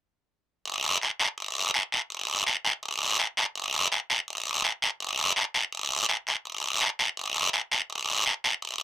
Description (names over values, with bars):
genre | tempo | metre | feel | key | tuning
latin | 166 BPM | 4/4 | straight | none | none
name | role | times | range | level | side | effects
guiro | percussion | 0.7-8.8 s | none | -24 LUFS | equal | none
room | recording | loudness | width
little or no reverb | dry, close 1970s-style studio recording | -25 LUFS | side -13 dB against mid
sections
0.7-3.5 A section; 3.5-8.8 B section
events
none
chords
none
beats
| 0.65 1.01 1.38 1.74 | 2.10 2.46 2.83 3.19 | 3.55 3.91 4.27 4.64 | 5.00 5.36 5.72 6.08 | 6.45 6.81 7.17 7.53 | 7.89 8.26 8.62